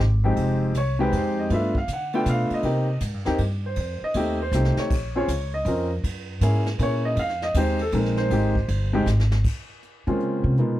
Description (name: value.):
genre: jazz piano trio.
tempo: 159 BPM.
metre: 3/4.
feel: swing 65% on 8ths.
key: F minor.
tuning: A4 = 440 Hz.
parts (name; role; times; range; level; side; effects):
upright bass; bass; 0.0-10.8 s; F1 to Eb3; -24 LUFS; equal; tube saturation.
jazz brush drum kit; drums; 0.0-10.7 s; crash cymbal, hi-hat, kick drum, ride cymbal, snare drum; -32 LUFS; equal; none.
warm grand piano; melody; 0.2-10.8 s; F2 to G5; -24 LUFS; equal; none.
room: little or no reverb.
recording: dry, close 1970s-style studio recording.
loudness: -21 LUFS.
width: side -14 dB against mid.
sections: 0.4-9.4 A section; 9.4-10.8 A section.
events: grand piano solo 0.0-9.4; drum fill 4.5-4.9, 9.1-9.4; upright bass solo 9.4-10.8.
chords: 0.4 Fm7; 1.5 G7; 2.6 Cm7; 3.8 F7; 4.9 Bbm; 6.0 Gb9; 7.2 Fm7; 9.4 Bbm9.